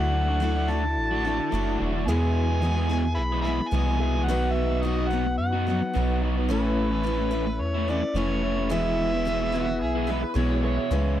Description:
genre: rock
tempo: 109 BPM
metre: 4/4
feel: straight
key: E mixolydian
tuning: A4 = 441 Hz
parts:
  - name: overdriven harmonica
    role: melody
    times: 0.0-10.3 s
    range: B4 to B5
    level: -29 LUFS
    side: right 1 dB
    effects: none
  - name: clear concert grand piano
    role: accompaniment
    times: 0.0-11.2 s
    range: E4 to E5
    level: -40 LUFS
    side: right 4 dB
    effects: none
  - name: picked steel-string acoustic guitar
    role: accompaniment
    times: 0.0-11.2 s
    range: B2 to B4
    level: -30 LUFS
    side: left 6 dB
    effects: none
  - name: tonewheel organ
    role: sustained chords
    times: 0.0-10.9 s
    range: C#4 to D5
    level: -40 LUFS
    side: equal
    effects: none
  - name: crunchy overdriven guitar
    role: riff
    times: 0.0-11.2 s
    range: E2 to G#4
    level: -28 LUFS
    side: right 1 dB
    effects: none
  - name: round analog bass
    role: bass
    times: 0.0-11.2 s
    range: E1 to F#2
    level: -26 LUFS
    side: equal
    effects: none
  - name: overdriven slide guitar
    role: second line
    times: 9.5-10.9 s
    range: F#4 to C#5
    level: -33 LUFS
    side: right 3 dB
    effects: none
room: little or no reverb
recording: dry, close 1970s-style studio recording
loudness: -22 LUFS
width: side -12 dB against mid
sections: 0.0-10.9 A section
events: none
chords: 0.0 Dadd9; 2.1 E; 4.3 B; 6.5 Aadd9; 8.7 E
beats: 0.42 0.98 1.53 | 2.08 2.63 3.18 3.73 | 4.29 4.84 5.39 5.94 | 6.49 7.04 7.60 8.15 | 8.70 9.26 9.81 10.36 | 10.92

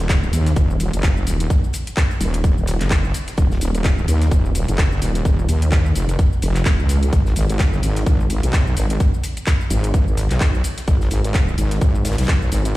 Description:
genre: bass house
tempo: 128 BPM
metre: 4/4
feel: swing 57% on 16ths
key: Eb minor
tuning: A4 = 440 Hz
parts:
  - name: wobble bass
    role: bass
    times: 0.0-12.7 s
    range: Eb1 to Eb2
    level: -18 LUFS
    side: equal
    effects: chorus, tube saturation, sidechain pumping
  - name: garage drum kit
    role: drums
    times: 0.0-12.7 s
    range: cabasa, handclaps, hi-hat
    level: -27 LUFS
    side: equal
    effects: none
  - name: electronic kick drum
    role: drums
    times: 0.1-12.4 s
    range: none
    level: -16 LUFS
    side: equal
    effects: none
  - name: natural country drum kit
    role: drums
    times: 0.1-12.8 s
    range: hi-hat, snare drum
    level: -38 LUFS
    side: left 2 dB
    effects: none
room: little or no reverb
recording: played on a big sound system in a bare room, large studio reverb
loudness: -16 LUFS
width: side -17 dB against mid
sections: 0.0-12.8 A section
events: none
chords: none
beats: 0.10 0.56 1.03 | 1.50 1.97 2.44 2.91 | 3.38 3.85 4.32 4.78 | 5.25 5.72 6.19 6.66 | 7.13 7.60 8.06 8.53 | 9.00 9.47 9.94 10.41 | 10.88 11.35 11.81 12.28 | 12.75

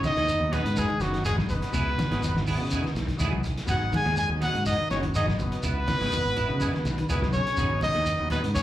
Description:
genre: afrobeat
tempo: 123 BPM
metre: 4/4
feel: straight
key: G# minor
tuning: A4 = 440 Hz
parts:
  - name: breathy baritone saxophone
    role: second line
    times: 0.0-8.6 s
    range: F#2 to G#3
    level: -37 LUFS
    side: left 2 dB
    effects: slapback echo
  - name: clear trombone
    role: second line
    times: 0.0-8.6 s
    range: F#3 to G#4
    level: -38 LUFS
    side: right 4 dB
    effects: slapback echo
  - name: combo organ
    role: accompaniment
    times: 0.0-8.5 s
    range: F#3 to F#4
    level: -38 LUFS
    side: left 2 dB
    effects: slapback echo
  - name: semi-hollow electric guitar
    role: arpeggios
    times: 0.0-8.6 s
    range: B2 to F#3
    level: -34 LUFS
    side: left 3 dB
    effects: slapback echo
  - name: semi-hollow electric guitar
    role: stabs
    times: 0.0-8.6 s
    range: F#3 to G#4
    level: -36 LUFS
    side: right 7 dB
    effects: ensemble chorus, slapback echo
  - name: cloth-damped thuddy drum kit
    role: drums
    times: 0.0-8.6 s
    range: hi-hat, kick drum, snare drum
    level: -33 LUFS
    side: equal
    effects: none
  - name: congas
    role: percussion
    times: 0.0-8.4 s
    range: none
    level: -35 LUFS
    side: right 1 dB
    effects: none
  - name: shekere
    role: percussion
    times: 0.0-8.6 s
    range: none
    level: -34 LUFS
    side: equal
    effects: none
  - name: warm trumpet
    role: melody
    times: 0.1-8.6 s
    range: F#4 to G#5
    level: -28 LUFS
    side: equal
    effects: slapback echo
  - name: fingered electric bass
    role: bass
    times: 0.2-8.6 s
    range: F#1 to C#3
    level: -29 LUFS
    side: equal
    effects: none
room: small room ambience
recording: live gig heard through the venue's PA, club reverb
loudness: -24 LUFS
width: side -13 dB against mid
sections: 0.0-8.6 A section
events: none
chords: 0.0 G#m7; 1.7 C#m7; 3.7 G#m7; 5.6 C#m7; 7.6 G#m7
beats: 0.28 0.76 1.25 | 1.74 2.22 2.71 3.19 | 3.68 4.17 4.66 5.14 | 5.63 6.12 6.60 7.09 | 7.58 8.07 8.55

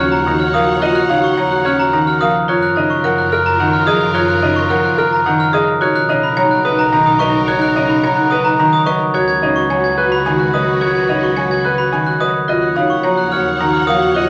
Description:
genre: classical, minimalist pattern music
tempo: 108 BPM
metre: 3/4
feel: straight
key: Eb minor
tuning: A4 = 440 Hz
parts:
  - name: clear concert grand piano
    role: melody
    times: 0.0-14.3 s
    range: Bb4 to Bb5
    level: -22 LUFS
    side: equal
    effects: none
  - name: mellow hollow alto flute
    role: second line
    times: 0.0-14.3 s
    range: D#4 to Gb4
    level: -24 LUFS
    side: equal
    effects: none
  - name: concert harp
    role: accompaniment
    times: 0.0-14.3 s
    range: Db3 to Gb3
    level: -24 LUFS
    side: equal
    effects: none
  - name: rich studio violin section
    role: sustained chords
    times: 0.0-14.3 s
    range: D#4 to Gb5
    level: -28 LUFS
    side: equal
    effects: none
  - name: buzzing marimba with medium hard mallets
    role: arpeggios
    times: 0.0-14.3 s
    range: Db4 to Db5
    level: -24 LUFS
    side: equal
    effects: none
  - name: glockenspiel with hard plastic mallets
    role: arpeggios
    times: 0.0-14.3 s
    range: Bb5 to Ab6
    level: -19 LUFS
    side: equal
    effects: none
  - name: rich studio double bass section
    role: bass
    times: 0.0-14.3 s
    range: B1 to Gb2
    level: -29 LUFS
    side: equal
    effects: none
room: wet large studio reverb, RT60 1.2 s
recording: none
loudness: -15 LUFS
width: mono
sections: 0.0-14.3 A section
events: none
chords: 0.0 Ebm7; 2.5 Gbmaj7; 5.8 Bmaj7; 9.2 Db7sus4; 12.5 Ebm7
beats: 0.26 | 0.82 1.37 1.93 | 2.48 3.04 3.59 | 4.15 4.71 5.26 | 5.82 6.37 6.93 | 7.48 8.04 8.59 | 9.15 9.71 10.26 | 10.82 11.37 11.93 | 12.48 13.04 13.59 | 14.15

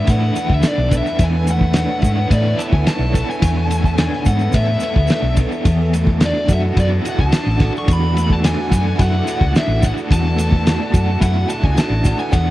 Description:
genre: psychedelic rock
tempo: 108 BPM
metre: 4/4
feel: straight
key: unclear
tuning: A4 = 440 Hz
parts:
  - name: fuzz lead guitar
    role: melody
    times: 0.0-12.5 s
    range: D5 to C#6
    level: -24 LUFS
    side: left 1 dB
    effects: distortion, tape echo
  - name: soft string machine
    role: sustained chords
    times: 0.0-12.5 s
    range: D4 to F#5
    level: -29 LUFS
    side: right 3 dB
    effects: ensemble chorus
  - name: crunchy overdriven guitar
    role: riff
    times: 0.0-12.5 s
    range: E2 to F#4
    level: -22 LUFS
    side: right 1 dB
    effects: tremolo
  - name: tanpura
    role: drone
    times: 0.0-12.5 s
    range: E2 to E3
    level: -32 LUFS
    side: equal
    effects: none
  - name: hollow-body short-scale fingered electric bass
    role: bass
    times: 0.1-12.5 s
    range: A1 to A2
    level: -17 LUFS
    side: equal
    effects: none
  - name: cloth-damped thuddy drum kit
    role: drums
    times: 0.1-12.5 s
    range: kick drum, ride cymbal, snare drum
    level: -18 LUFS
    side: equal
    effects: none
  - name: tube shaker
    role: percussion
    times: 0.1-12.5 s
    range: none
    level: -37 LUFS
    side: right 5 dB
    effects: none
room: little or no reverb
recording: dry, close 1970s-style studio recording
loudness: -14 LUFS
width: side -16 dB against mid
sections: 0.0-12.5 A section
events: none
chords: 0.0 E7sus4; 5.7 D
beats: 0.08 0.64 | 1.20 1.75 2.31 2.87 | 3.43 3.98 4.54 5.10 | 5.66 6.21 6.77 7.33 | 7.88 8.44 9.00 9.55 | 10.11 10.67 11.22 11.78 | 12.33

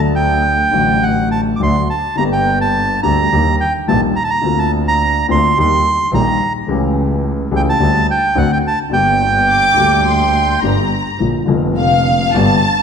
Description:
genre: tango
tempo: 106 BPM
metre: 4/4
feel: rubato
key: G minor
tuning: A4 = 441 Hz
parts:
  - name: dark upright piano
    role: accompaniment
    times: 0.0-12.6 s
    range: F1 to A4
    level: -17 LUFS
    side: left 4 dB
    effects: none
  - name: warm double bass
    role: bass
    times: 0.0-12.6 s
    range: F1 to Eb2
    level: -19 LUFS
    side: right 2 dB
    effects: none
  - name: bandoneon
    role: melody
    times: 0.2-10.6 s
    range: F#5 to D6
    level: -15 LUFS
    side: right 3 dB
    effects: none
  - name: rich studio violin section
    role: second line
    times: 9.5-12.8 s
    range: F5 to D6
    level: -16 LUFS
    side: left 2 dB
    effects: none
room: wet recital hall reverb, RT60 1.8 s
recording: recorded in a church or concert hall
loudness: -12 LUFS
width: side -7 dB against mid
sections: 0.0-11.2 A section; 11.2-12.8 B section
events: violin section solo 11.2-12.8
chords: 0.0 D; 2.2 Gm; 3.3 Eb; 4.4 Bbadd9/D; 5.6 Eb; 6.7 A7/C#; 7.8 Gm/D; 8.4 D7; 8.9 Gm; 11.2 Bb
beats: 0.45 1.02 1.60 | 2.17 2.75 3.31 3.88 | 4.44 5.01 5.57 6.13 | 6.69 7.25 7.80 8.36 | 8.93 9.49 10.06 10.63 | 11.21 11.78 12.35

